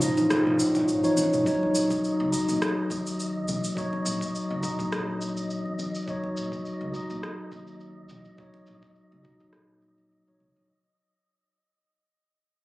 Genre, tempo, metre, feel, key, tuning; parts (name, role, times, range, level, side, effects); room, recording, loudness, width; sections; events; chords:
organic downtempo; 104 BPM; 4/4; swing 54% on 16ths; A4 = 439 Hz
oud; melody; 0.0-0.8 s; barely audible
tine electric piano; accompaniment; 0.0-10.7 s; F3 to Eb5; -26 LUFS; left 1 dB; phaser, sidechain pumping, low-pass filter, tape echo
granular cloud pad; sustained chords; 0.0-1.4 s; Ab3 to Db5; -38 LUFS; right 1 dB
organic electronic drum kit; drums; 0.0-10.7 s; cabasa, rim click, toms; -33 LUFS; equal; overdrive, low-pass filter on perc, low-pass filter on toms, low-pass filter on snare, low-pass filter on room
congas; percussion; 0.0-10.5 s; -38 LUFS; equal
steel tongue drum; arpeggios; 0.2-1.4 s; Db4 to F4; -30 LUFS; right 1 dB
upright bass; bass; 0.2-10.7 s; Bb1 to Eb2; -37 LUFS; equal; sidechain pumping
electronic kick drum; drums; 1.5-9.5 s; -39 LUFS; equal
wind-like tuned noise texture; texture; 1.7-10.7 s; Eb5; -42 LUFS; equal; built-in reverb
wet recital hall reverb, RT60 1.4 s, small room ambience; recorded on a phone in the room, club reverb; -24 LUFS; side -18 dB against mid
0.0-1.5 A section; 1.5-10.7 B section
break 0.0-1.5; fade-out 1.5-10.7; filter sweep on tine electric piano 1.5-10.7
0.0 Dbadd9; 1.5 Ebm7